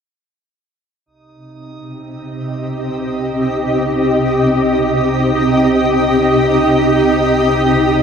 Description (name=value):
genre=ambient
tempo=free time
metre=none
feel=none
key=C minor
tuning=A4 = 440 Hz
part: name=shimmering ambient pad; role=sustained chords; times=2.3-8.0 s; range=C3 to Eb5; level=-13 LUFS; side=equal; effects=chorus, built-in reverb, shimmer reverb
part: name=warm sub bass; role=bass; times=1.1-8.0 s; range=C2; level=-31 LUFS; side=equal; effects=none
part: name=drifting glass-harmonics texture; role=texture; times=1.1-8.0 s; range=Eb4 to Eb6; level=-28 LUFS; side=right 3 dB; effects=chorus, built-in reverb, shimmer reverb
room=wet huge ambient reverb, RT60 8.3 s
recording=in a vast, echoing space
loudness=-12 LUFS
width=side -7 dB against mid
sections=1.1-8.0 A section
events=none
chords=1.1 Cm